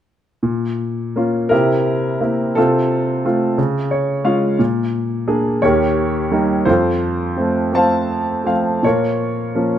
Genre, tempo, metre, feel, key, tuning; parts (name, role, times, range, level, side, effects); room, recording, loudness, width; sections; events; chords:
classical, lyrical solo piano; 54-60 BPM (dotted quarters); 6/8; rubato; Bb minor; A4 = 440 Hz
warm grand piano; solo; 0.4-9.8 s; Eb2 to A5; -15 LUFS; equal
light reverb; close, detailed microphones; -15 LUFS; side -10 dB against mid
0.4-9.8 A section
grand piano fill 3.6-4.6
0.4 Bbm; 1.5 C7; 2.6 F/C; 3.6 Db; 4.6 Bb7; 5.6 Eb; 6.7 F; 8.8 Bbm